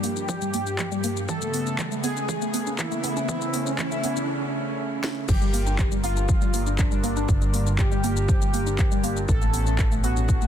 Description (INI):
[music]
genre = melodic techno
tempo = 120 BPM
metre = 4/4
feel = straight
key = unclear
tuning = A4 = 440 Hz
[part]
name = fat analog lead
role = melody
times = 0.0-10.5 s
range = D4 to A4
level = -30 LUFS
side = equal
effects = lush chorus, sidechain pumping, ping-pong delay
[part]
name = warm analog pad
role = sustained chords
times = 0.0-10.5 s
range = G2 to Bb4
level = -33 LUFS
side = equal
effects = chorus, sidechain pumping
[part]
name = woody wave-folded pluck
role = arpeggios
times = 0.0-10.5 s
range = E3 to D4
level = -30 LUFS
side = equal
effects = ensemble chorus, sidechain pumping, ping-pong delay
[part]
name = techno drum kit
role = drums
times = 0.0-10.5 s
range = crash cymbal, handclaps, hi-hat, shaker, snare drum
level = -32 LUFS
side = left 1 dB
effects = none
[part]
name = riser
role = sound effects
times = 0.2-4.3 s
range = none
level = -34 LUFS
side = equal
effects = none
[part]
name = electronic kick drum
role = drums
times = 0.3-10.4 s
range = none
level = -23 LUFS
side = equal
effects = high-pass filter on kick
[part]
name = plucky analog bass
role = bass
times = 5.3-10.5 s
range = G1 to A1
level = -26 LUFS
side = equal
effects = tube saturation, sidechain pumping
[part]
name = overtone-sweeping drone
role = drone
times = 6.1-10.5 s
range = G2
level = -39 LUFS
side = equal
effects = chorus, built-in reverb, phaser, sidechain pumping
[sound]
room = little or no reverb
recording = dense, heavily limited modern master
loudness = -22 LUFS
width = side -10 dB against mid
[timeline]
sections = 0.0-5.3 A section; 5.3-10.5 B section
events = build-up 0.0-5.3; filter sweep on synth pluck 0.0-5.3; riser 0.2-4.3; break 4.3-5.3; drum fill 5.0; drop 5.3-10.5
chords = 0.0 Gm7; 1.3 Aadd9; 5.3 Gm7; 9.3 Aadd9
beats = 0.29 0.79 | 1.29 1.79 2.29 2.79 | 3.29 3.79 4.29 4.79 | 5.29 5.79 6.29 6.79 | 7.29 7.79 8.29 8.79 | 9.29 9.79 10.29